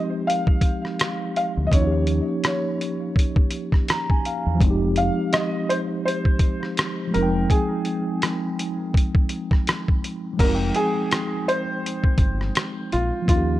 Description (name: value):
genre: lo-fi hip hop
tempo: 83 BPM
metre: 4/4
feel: swing 56% on 16ths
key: F minor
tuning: A4 = 441 Hz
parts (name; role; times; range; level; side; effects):
- mellow tine electric piano; accompaniment; 0.0-13.6 s; F3 to Bb5; -25 LUFS; equal; medium stereo tremolo, cassette tape, low-pass filter
- felt-muted upright piano; melody; 0.3-13.6 s; F4 to F5; -26 LUFS; equal; low-pass filter, tape echo
- lo-fi sampler-style drum kit; drums; 0.3-13.5 s; crash cymbal, hi-hat, kick drum, rim click; -21 LUFS; equal; none
- deep dub fingered electric bass; bass; 1.6-13.6 s; F1 to E2; -23 LUFS; equal; none
room: light reverb, digital ambience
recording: none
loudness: -20 LUFS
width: side -15 dB against mid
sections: 0.0-10.4 A section; 10.4-13.6 B section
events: tine electric piano fill 3.5-4.6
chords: 0.0 Fm9; 1.7 Eb9; 4.6 Fm9